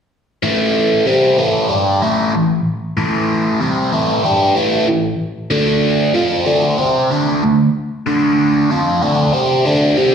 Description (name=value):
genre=rock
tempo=94 BPM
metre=4/4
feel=straight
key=unclear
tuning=A4 = 439 Hz
part: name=biting overdriven guitar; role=solo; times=0.4-10.1 s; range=A2 to C5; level=-13 LUFS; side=equal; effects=phaser, slapback echo
room=moderate club reverb, RT60 0.8 s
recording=live gig heard through the venue's PA, recital hall reverb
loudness=-13 LUFS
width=side -7 dB against mid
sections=0.4-10.1 A section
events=none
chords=0.4 A5; 5.5 D5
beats=| 0.42 1.05 1.69 2.33 | 2.96 3.60 4.24 4.88 | 5.51 6.15 6.79 7.42 | 8.06 8.70 9.34 9.97